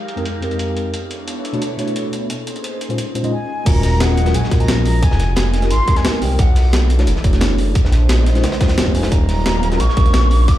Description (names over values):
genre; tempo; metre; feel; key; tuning
liquid drum and bass; 176 BPM; 4/4; straight; Eb dorian; A4 = 440 Hz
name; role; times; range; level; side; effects
airy breathy pad; sustained chords; 0.0-10.6 s; E3 to F5; -27 LUFS; left 1 dB; chorus, phaser
breakbeat sampler-style drum kit; drums; 0.1-10.6 s; crash cymbal, hi-hat, snare drum; -24 LUFS; equal; overdrive
mellow tine electric piano; accompaniment; 0.2-10.5 s; F2 to Eb5; -23 LUFS; left 1 dB; medium stereo tremolo, digital delay
breathy concert flute; melody; 3.3-6.7, 9.0-10.6 s; F#5 to D6; -24 LUFS; equal; vintage 12-bit sampler grit, digital delay
smooth synth bass; bass; 3.7-10.5 s; Eb1 to Db2; -15 LUFS; equal; none
crunchy breakbeat drum kit; drums; 3.7-10.6 s; hi-hat, snare drum; -28 LUFS; equal; high-pass filter on hats, high-pass filter on snare, high-pass filter on room
electronic kick drum; drums; 3.7-10.6 s; none; -14 LUFS; equal; none
room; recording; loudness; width
light reverb, small room ambience; played on a big sound system in a bare room, large studio reverb, low-pass filter; -14 LUFS; side -13 dB against mid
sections
0.0-3.7 A section; 3.7-10.6 B section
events
drop 3.7-10.6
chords
0.0 Fm11; 0.9 Bm11; 2.3 Bbm11; 3.7 Ebm11; 5.0 Fm11; 6.4 Bm11; 7.8 Bbm11; 9.1 Ebm11